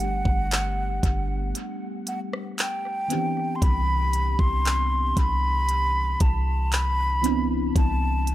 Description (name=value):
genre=contemporary R&B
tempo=58 BPM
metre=4/4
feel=straight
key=unclear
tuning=A4 = 440 Hz
part: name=breathy hollow jazz flute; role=melody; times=0.0-8.3 s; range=F#5 to C6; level=-27 LUFS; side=equal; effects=tape echo
part: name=mellow FM electric piano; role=accompaniment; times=0.0-8.3 s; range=D#3 to G4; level=-31 LUFS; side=right 1 dB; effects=chorus, phaser, tape echo
part: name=warm 808-style bass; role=bass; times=0.0-8.3 s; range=G1 to C2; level=-25 LUFS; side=equal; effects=none
part: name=smooth R&B drum kit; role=drums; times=0.0-8.3 s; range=handclaps, hi-hat, kick drum, rim click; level=-25 LUFS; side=equal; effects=none
room=light reverb, digital ambience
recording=echo-heavy mix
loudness=-22 LUFS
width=side -14 dB against mid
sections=0.0-8.3 A section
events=break 1.5-3.6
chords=0.0 Gmaj9; 3.1 Cmaj9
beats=0.51 1.55 2.58 | 3.62 4.65 5.69 6.72 | 7.75